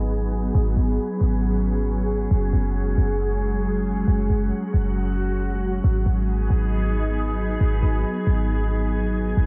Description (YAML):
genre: hip hop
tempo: 136 BPM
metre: 4/4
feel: half-time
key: unclear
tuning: A4 = 442 Hz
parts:
  - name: glassy FM pad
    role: sustained chords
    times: 0.0-9.5 s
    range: F#3 to G#4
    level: -27 LUFS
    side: equal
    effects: ensemble chorus, built-in reverb, low-pass filter
  - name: clean 808-style bass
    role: bass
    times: 0.0-9.5 s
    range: F#1 to G#1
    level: -24 LUFS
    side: equal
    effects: none
room: little or no reverb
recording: heavily compressed radio sound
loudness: -23 LUFS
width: mono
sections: 0.0-9.5 A section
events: filter sweep on ambient pad 0.0-9.5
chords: 0.0 G#m7; 2.3 F#sus2; 5.8 G#m7